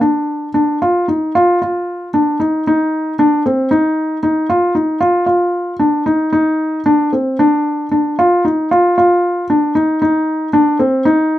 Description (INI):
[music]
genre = contemporary instrumental, contemporary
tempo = 228 BPM (eighths)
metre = 7/8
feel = straight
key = unclear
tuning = A4 = 444 Hz
[part]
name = felt-muted upright piano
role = solo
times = 0.0-11.4 s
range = C4 to F4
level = -12 LUFS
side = equal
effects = none
[sound]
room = moderate studio ambience, RT60 0.5 s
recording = dark, warm production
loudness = -12 LUFS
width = side -14 dB against mid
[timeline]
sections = 0.0-11.4 A section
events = none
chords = none